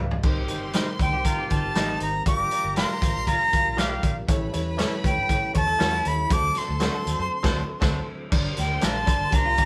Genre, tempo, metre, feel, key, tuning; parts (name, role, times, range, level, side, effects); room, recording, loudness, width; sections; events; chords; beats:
uptempo 1960s-style soul; 119 BPM; 4/4; straight; G minor; A4 = 435 Hz
warm upright piano; accompaniment; 0.0-9.7 s; G2 to F5; -37 LUFS; equal
vintage muted fingered electric bass; bass; 0.0-9.7 s; G1 to C3; -32 LUFS; equal
vintage drum kit; drums; 0.1-9.7 s; crash cymbal, hi-hat, kick drum, snare drum, toms; -28 LUFS; equal
clear horn section; second line; 0.2-4.1, 8.3-9.7 s; D3 to G4; -39 LUFS; equal
warm studio string section; second line; 0.2-9.7 s; A4 to C6; -40 LUFS; equal
tonewheel organ; sustained chords; 0.2-9.7 s; D3 to D4; -40 LUFS; equal; slow rotary speaker, overdrive
direct-recorded clean electric guitar; stabs; 0.7-9.0 s; F3 to Bb4; -35 LUFS; equal
bright reedy silver concert flute; melody; 1.0-9.7 s; F5 to D6; -27 LUFS; equal
electric guitar through a small old amp; riff; 1.1-2.1, 5.5-9.7 s; D4 to C#5; -36 LUFS; equal
moderate studio reverb, RT60 0.6 s; band playing live in one room; -24 LUFS; mono
0.2-8.3 A section; 8.3-9.7 B section
drum fill 0.0; band accent 7.3-8.3
0.2 Cm7; 2.3 Gm7; 4.3 A7; 6.3 D7; 8.3 Gm
| 0.24 0.75 1.25 1.76 | 2.26 2.77 3.27 3.78 | 4.28 4.79 5.29 5.80 | 6.30 6.81 7.31 7.81 | 8.32 8.82 9.32